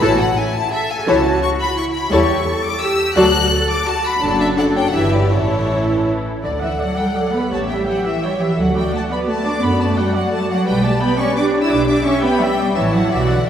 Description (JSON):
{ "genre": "quick classical-period movement for string orchestra", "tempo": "170 BPM", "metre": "3/4", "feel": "rubato", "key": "D major", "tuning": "A4 = 440 Hz", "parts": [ { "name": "bright symphonic violin section", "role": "melody", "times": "0.0-13.5 s", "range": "C#5 to F#6", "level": "-23 LUFS", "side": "left 4 dB", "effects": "none" }, { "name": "rich studio violin section", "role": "second line", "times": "0.0-13.5 s", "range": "E4 to E6", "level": "-23 LUFS", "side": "left 3 dB", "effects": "none" }, { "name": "warm symphonic viola section", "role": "accompaniment", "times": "0.0-13.5 s", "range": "E3 to G5", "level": "-20 LUFS", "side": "equal", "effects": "none" }, { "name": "clear symphonic double bass section", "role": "bass", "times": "0.0-13.4 s", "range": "F#1 to F#2", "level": "-23 LUFS", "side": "right 1 dB", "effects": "none" }, { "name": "rich symphonic cello section", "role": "bass", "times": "0.0-13.5 s", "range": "D3 to A4", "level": "-20 LUFS", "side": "right 1 dB", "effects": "none" } ], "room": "wet concert hall reverb, RT60 2.3 s", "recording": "heard from further back in the room", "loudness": "-15 LUFS", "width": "side -9 dB against mid", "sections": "0.0-6.4 A section; 6.4-13.5 B section", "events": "none", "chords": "0.0 A5; 1.1 A/C#; 2.1 A7/E; 3.2 D; 4.2 D/F#; 4.9 Em/G; 5.3 A; 6.4 D; 7.5 A7; 8.6 D; 9.6 D/F#; 10.7 G/B; 11.7 Em7/B; 12.8 A; 13.1 Bm" }